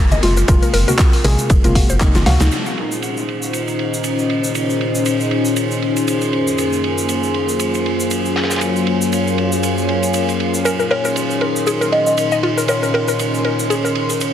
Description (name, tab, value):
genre	deep house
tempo	118 BPM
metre	4/4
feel	swing 56% on 16ths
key	Bb minor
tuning	A4 = 440 Hz
part	warbly tape-like pad	sustained chords	0.0-14.3 s	Gb2 to C6	-21 LUFS	equal	chorus, built-in reverb, sidechain pumping
part	rubbery square bass	bass	0.0-2.5 s	Gb1 to Db2	-17 LUFS	equal	sidechain pumping
part	mallet-like synth pluck	arpeggios	0.1-2.4, 10.7-13.9 s	F4 to F5	-22 LUFS	left 2 dB	chorus, sidechain pumping, dub echo
part	deep house drum kit	drums	0.1-2.6 s	crash cymbal, handclaps, hi-hat, snare drum	-23 LUFS	equal	low-pass filter on hats, low-pass filter on snare, low-pass filter on cymbals, low-pass filter on room
part	congas	percussion	0.1-2.2 s	none	-27 LUFS	right 1 dB	none
part	egg shaker	percussion	0.1-14.3 s	none	-28 LUFS	right 1 dB	none
part	deep mellow chord stab	stabs	0.2-2.5 s	C3 to Ab4	-21 LUFS	left 1 dB	chorus, sidechain pumping, dub echo
part	modern studio drum kit	drums	0.2-14.3 s	ride cymbal, snare drum	-25 LUFS	right 5 dB	sidechain pumping on cymbals, high-pass filter on cymbals, low-pass filter on cymbals, high-pass filter on snare, low-pass filter on snare, high-pass filter on room, low-pass filter on room
part	electronic kick drum	drums	0.5-2.1 s	none	-14 LUFS	equal	none
part	deep dark ambient pad	texture	3.3-14.3 s	Gb3 to C6	-21 LUFS	left 2 dB	chorus, built-in reverb, sidechain pumping
part	buzzing kalimba	melody	10.9-13.3 s	Bb4 to Eb5	-21 LUFS	equal	tape echo
room	wet lush hall reverb, RT60 1.9 s, small room reverb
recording	dense, heavily limited modern master, vinyl crackle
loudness	-14 LUFS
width	side -9 dB against mid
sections	0.0-2.5 A section; 2.5-14.3 B section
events	drum fill 2.1-2.5; band accent 2.4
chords	0.0 Gbmaj9#11; 2.5 Bbm11; 6.3 Gbmaj9#11; 10.7 Bbm11